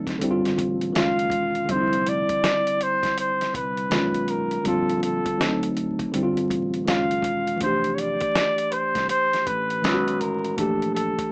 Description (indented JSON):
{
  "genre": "R&B, neo-soul",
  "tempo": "81 BPM",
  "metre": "4/4",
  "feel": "swing 64% on 16ths",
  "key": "F major",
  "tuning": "A4 = 440 Hz",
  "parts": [
    { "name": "tine electric piano", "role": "accompaniment", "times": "0.0-11.3 s", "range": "D3 to G4", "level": "-24 LUFS", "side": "equal", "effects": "overdrive, fast stereo tremolo" },
    { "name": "fingered electric bass", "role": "bass", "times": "0.0-11.1 s", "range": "E1 to D2", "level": "-33 LUFS", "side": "equal", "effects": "none" },
    { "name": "dusty soul sampler-style drum kit", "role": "drums", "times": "0.1-11.3 s", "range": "hi-hat, kick drum, snare drum", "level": "-28 LUFS", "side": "equal", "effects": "none" },
    { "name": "warm flugelhorn", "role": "melody", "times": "1.0-11.3 s", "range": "A4 to F5", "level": "-24 LUFS", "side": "equal", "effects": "none" }
  ],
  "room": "moderate small room reverb, RT60 0.5 s",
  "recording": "rough home demo mix, vinyl crackle, small speaker sound",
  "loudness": "-20 LUFS",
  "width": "side -30 dB against mid",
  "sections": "0.0-11.3 A section",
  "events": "none",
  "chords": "0.2 G9sus4; 0.9 Gbsus2; 1.7 Fsus2; 3.9 Bmaj7; 4.6 Bbmaj7; 5.4 D7b9; 6.1 G9sus4; 6.9 Gbsus2; 7.6 Fmaj9; 9.8 Bmaj7; 10.6 Bbmaj7"
}